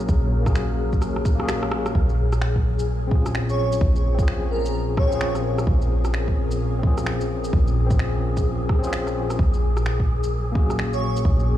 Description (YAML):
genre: future garage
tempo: 129 BPM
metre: 4/4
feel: swing 61% on 16ths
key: Bb minor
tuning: A4 = 439 Hz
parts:
  - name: overdriven tine electric piano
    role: accompaniment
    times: 0.0-11.6 s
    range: Bb3 to Ab4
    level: -29 LUFS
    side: left 3 dB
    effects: fast tremolo, sidechain pumping, tape echo
  - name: ethereal airy pad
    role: sustained chords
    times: 0.0-11.6 s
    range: Bb2 to Db5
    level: -27 LUFS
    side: left 1 dB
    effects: ensemble chorus, built-in reverb, sidechain pumping
  - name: soft 808-style bass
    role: bass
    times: 0.0-11.6 s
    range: Bb1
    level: -24 LUFS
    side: equal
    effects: sidechain pumping
  - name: electronic shaker, rim click and finger snaps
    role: drums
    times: 0.0-11.5 s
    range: none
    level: -31 LUFS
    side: right 1 dB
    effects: small room ambience
  - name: wind-like tuned noise texture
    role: texture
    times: 0.0-11.6 s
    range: Ab4 to Bb4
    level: -36 LUFS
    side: right 1 dB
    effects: built-in reverb
  - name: electronic kick drum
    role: drums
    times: 0.1-11.4 s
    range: none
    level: -21 LUFS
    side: equal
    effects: small room ambience
  - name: airy dreamy lead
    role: melody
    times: 3.5-5.3, 10.9-11.2 s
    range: Bb4 to Db5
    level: -29 LUFS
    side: right 2 dB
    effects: chorus, tape echo
room: little or no reverb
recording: played on a big sound system in a bare room, cassette tape, large studio reverb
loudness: -19 LUFS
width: side -12 dB against mid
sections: 0.0-1.9 A section; 1.9-11.6 B section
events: drum fill 1.0-1.9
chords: 0.0 Gbadd9/Bb; 1.9 Bbm7; 9.4 Gbadd9/Bb